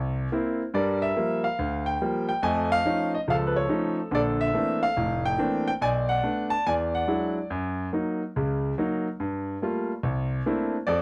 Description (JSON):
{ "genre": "solo jazz", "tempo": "142 BPM", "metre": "4/4", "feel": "swing 66% on 8ths", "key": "unclear", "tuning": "A4 = 439 Hz", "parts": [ { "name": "clear concert grand piano", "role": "solo", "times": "0.0-11.0 s", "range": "F1 to A5", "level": "-26 LUFS", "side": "equal", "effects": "none" } ], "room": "light reverb", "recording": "close, detailed microphones", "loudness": "-27 LUFS", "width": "mono", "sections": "0.7-11.0 A section", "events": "none", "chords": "0.0 C7; 0.7 Gm7; 2.4 Faug7; 4.1 Bbmaj9#11; 5.8 Bm7; 6.7 E9; 7.5 Gb6; 9.2 Gm9; 10.0 C13", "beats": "0.32 | 0.74 1.17 1.59 2.01 | 2.43 2.85 3.28 3.70 | 4.12 4.54 4.97 5.39 | 5.81 6.23 6.66 7.08 | 7.50 7.92 8.34 8.77 | 9.19 9.61 10.03 10.45 | 10.88" }